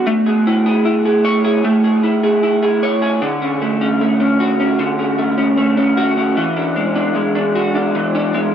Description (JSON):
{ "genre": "dream pop", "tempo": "76 BPM", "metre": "4/4", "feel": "straight", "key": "A major", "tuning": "A4 = 440 Hz", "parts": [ { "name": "electric guitar through a small old amp", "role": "solo", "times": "0.0-8.5 s", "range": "D3 to C#5", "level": "-13 LUFS", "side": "equal", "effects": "analog chorus, tape echo" } ], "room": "moderate huge ambient reverb, RT60 8.3 s", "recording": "worn, warbling old tape, cassette tape, warbly pitch drift", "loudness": "-13 LUFS", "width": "side -9 dB against mid", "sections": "0.1-8.5 A section", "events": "none", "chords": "0.1 Amaj7; 3.2 Dmaj7; 6.4 E9", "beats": "| 0.06 0.85 1.64 2.43 | 3.22 4.01 4.80 5.58 | 6.38 7.16 7.95" }